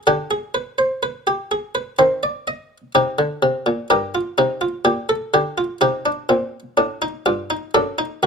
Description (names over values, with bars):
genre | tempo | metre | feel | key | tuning
classical, baroque-style 3-part fugue for harpsichord | 62 BPM | 4/4 | straight | unclear | A4 = 442 Hz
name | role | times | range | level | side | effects
buff-stop harpsichord | solo | 0.0-8.3 s | F#2 to Eb5 | -17 LUFS | equal | none
room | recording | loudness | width
light reverb | close, detailed microphones | -18 LUFS | side -5 dB against mid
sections
0.0-8.3 A section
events
none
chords
0.1 G/D; 2.0 Cm/Eb; 3.9 Gm; 7.7 D/F#